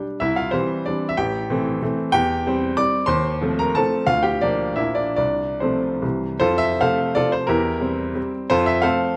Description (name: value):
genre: classical, romantic triple-time dance for piano with dotted rhythms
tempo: 136-204 BPM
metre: 3/4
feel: rubato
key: F major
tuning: A4 = 440 Hz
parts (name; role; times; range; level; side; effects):
- warm baby grand piano; solo; 0.0-9.2 s; A1 to D6; -21 LUFS; equal; none
room: moderate recital hall reverb, RT60 1.5 s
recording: close, detailed microphones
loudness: -21 LUFS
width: mono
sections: 0.0-6.4 A section; 6.4-9.2 B section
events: none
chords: 0.2 C; 1.2 Am7; 2.1 C/E; 3.1 F7/Eb; 4.1 Bb/D; 4.8 Bb; 5.2 F/C; 6.0 C; 6.4 F; 7.5 C7/E; 8.5 F